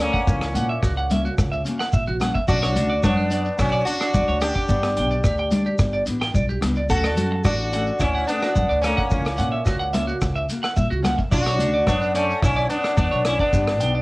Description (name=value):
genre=highlife guitar band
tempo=109 BPM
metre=4/4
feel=straight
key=unclear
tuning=A4 = 442 Hz
part: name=sitar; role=melody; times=0.0-14.0 s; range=F#3 to A4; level=-23 LUFS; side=equal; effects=cassette tape
part: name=fingerpicked steel-string acoustic guitar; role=accompaniment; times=0.0-14.0 s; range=E3 to D4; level=-30 LUFS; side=left 2 dB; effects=cassette tape
part: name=upright bass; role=bass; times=0.0-14.0 s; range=G1 to A#2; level=-25 LUFS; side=equal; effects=none
part: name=shekere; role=percussion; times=0.0-13.9 s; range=none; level=-27 LUFS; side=equal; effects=none
part: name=clean electric guitar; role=arpeggios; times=0.1-14.0 s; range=D4 to G5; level=-27 LUFS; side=right 2 dB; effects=harmonic tremolo, cassette tape, analog delay
part: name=vintage drum kit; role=drums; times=0.1-13.9 s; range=hi-hat, kick drum, rim click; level=-26 LUFS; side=equal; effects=cassette tape
part: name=congas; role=percussion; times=0.3-13.6 s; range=none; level=-26 LUFS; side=left 1 dB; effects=none
room=light reverb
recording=home recording on cassette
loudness=-19 LUFS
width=side -22 dB against mid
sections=0.0-14.0 A section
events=none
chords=0.3 F#7/C#; 2.5 Bmadd9; 4.7 G; 6.9 Dmaj7; 9.1 F#7/C#; 11.3 Bmadd9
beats=| 0.28 0.83 1.38 1.93 | 2.48 3.04 3.59 4.14 | 4.69 5.25 5.80 6.35 | 6.90 7.45 8.01 8.56 | 9.11 9.66 10.21 10.77 | 11.32 11.87 12.43 12.98 | 13.53